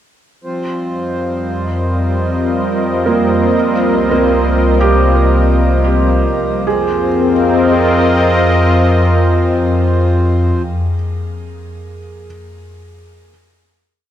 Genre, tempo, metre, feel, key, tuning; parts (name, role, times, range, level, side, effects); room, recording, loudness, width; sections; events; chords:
ambient; 58 BPM; 3/4; straight; F minor; A4 = 441 Hz
warm analog pad; sustained chords; 0.4-10.5 s; G3 to Eb5; -15 LUFS; left 1 dB; chorus, tremolo, shimmer reverb
deep rumbling drone; bass; 1.2-10.5 s; C2 to F2; -16 LUFS; equal; built-in reverb
pedal harmonium; drone; 0.4-10.6 s; F3 to C4; -20 LUFS; equal
felt-muted upright piano; arpeggios; 3.1-12.3 s; Bb3 to Ab4; -18 LUFS; right 4 dB; tape echo, shimmer reverb
wet spring reverb, RT60 2.1 s; echo-heavy mix, cassette tape; -11 LUFS; side -10 dB against mid
0.4-6.7 A section; 6.7-9.8 final chord
fade-in on analog synth pad 0.4-6.7
0.4 F5; 3.5 Cm7; 6.7 Fm7